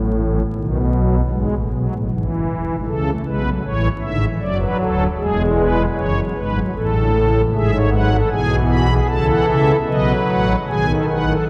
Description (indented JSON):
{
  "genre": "classical, baroque-style 4-part fugue for pipe organ",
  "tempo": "77 BPM",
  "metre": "3/4",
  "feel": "straight",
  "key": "A major",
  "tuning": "A4 = 440 Hz",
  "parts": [
    { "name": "pipe organ, strings celeste", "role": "solo", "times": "0.0-11.5 s", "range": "D1 to B5", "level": "-18 LUFS", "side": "equal", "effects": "none" }
  ],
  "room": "wet cathedral reverb, RT60 4.8 s",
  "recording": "dark, warm production, vinyl crackle",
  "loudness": "-18 LUFS",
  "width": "mono",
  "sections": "0.0-11.5 A section",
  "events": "none",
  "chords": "0.0 A5; 0.5 B7; 2.1 E; 2.9 A; 4.4 D/F#; 5.2 E; 6.7 A; 7.5 E/G#; 9.1 A/C#; 9.9 B7"
}